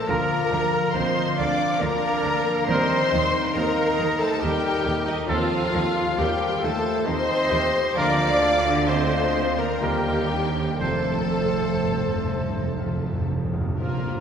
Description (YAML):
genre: classical, slow romantic movement for symphony orchestra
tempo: 59-70 BPM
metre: 3/4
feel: rubato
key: unclear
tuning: A4 = 441 Hz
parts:
  - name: rich studio violin section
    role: melody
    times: 0.0-14.2 s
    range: Bb4 to D6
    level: -30 LUFS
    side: left 3 dB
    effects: none
  - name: mellow concert flute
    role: second line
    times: 0.0-14.2 s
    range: G4 to Bb5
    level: -31 LUFS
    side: equal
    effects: none
  - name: rich studio violin section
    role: second line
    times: 0.0-14.2 s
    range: Bb3 to D5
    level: -32 LUFS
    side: left 3 dB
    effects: none
  - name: warm clarinet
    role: second line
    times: 0.0-14.2 s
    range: D4 to D5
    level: -29 LUFS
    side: left 1 dB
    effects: none
  - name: warm studio viola section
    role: accompaniment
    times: 0.0-14.2 s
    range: G3 to D5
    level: -31 LUFS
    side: right 2 dB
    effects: none
  - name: dark French horn section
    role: sustained chords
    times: 0.0-14.2 s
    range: Eb3 to F4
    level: -30 LUFS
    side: left 2 dB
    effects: none
  - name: concert harp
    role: arpeggios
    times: 0.0-14.2 s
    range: Bb2 to C6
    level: -32 LUFS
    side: equal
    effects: none
  - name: mellow bassoon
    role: accompaniment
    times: 0.1-14.2 s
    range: F3 to G4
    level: -31 LUFS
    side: left 1 dB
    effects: none
  - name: bright trombone section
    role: sustained chords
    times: 0.1-14.2 s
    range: F3 to F4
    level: -36 LUFS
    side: right 2 dB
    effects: none
  - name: warm trumpet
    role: stabs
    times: 0.1-11.2 s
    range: A4 to C5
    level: -33 LUFS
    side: right 1 dB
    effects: none
  - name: rich studio double bass section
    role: bass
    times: 0.1-14.2 s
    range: F1 to Eb2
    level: -31 LUFS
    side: right 3 dB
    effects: none
  - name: warm studio cello section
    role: bass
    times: 0.1-14.2 s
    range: Eb2 to Eb3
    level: -32 LUFS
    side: right 4 dB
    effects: none
  - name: timpani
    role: percussion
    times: 10.8-14.2 s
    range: F2 to Bb2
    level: -28 LUFS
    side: equal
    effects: none
  - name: mellow cor anglais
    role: second line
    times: 13.8-14.2 s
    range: F4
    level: -34 LUFS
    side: equal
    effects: none
room: wet cathedral reverb, RT60 4.3 s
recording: recorded in a church or concert hall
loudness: -20 LUFS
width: side -7 dB against mid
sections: 0.0-13.8 A section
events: timpani fill 10.8-13.8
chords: 0.1 Bb/D; 2.7 Cm7/Eb; 5.3 F7/Eb; 8.0 Bb/D; 9.8 Cm7/Eb; 10.8 F